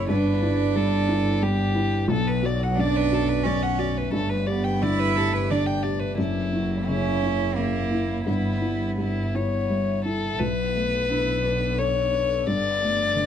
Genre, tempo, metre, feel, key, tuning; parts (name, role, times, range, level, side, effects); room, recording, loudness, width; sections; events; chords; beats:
neoclassical piano and strings; 88 BPM; 3/4; rubato; B minor; A4 = 440 Hz
warm violin; melody; 0.0-13.3 s; E4 to G5; -27 LUFS; left 5 dB
clear cello; second line; 0.0-13.3 s; F#3 to E4; -28 LUFS; right 6 dB; slapback echo
felt-muted upright piano; accompaniment; 0.0-13.3 s; B1 to B4; -27 LUFS; left 1 dB
warbly tape-like pad; sustained chords; 0.0-13.3 s; A3 to E5; -38 LUFS; left 1 dB
warm double bass; bass; 0.0-13.3 s; F#1 to B1; -27 LUFS; equal
light reverb; dark, warm production; -21 LUFS; side -9 dB against mid
0.0-10.4 A section; 10.4-13.3 B section
0.1 Em/G; 2.1 Bm7; 4.1 Gadd9; 6.2 F#7; 8.3 Em/G; 10.4 Bm7; 12.5 Gadd9
| 0.10 0.76 1.43 | 2.10 2.79 3.46 | 4.13 4.83 5.51 | 6.18 6.88 7.57 | 8.27 8.99 9.70 | 10.41 11.10 11.79 | 12.47 13.15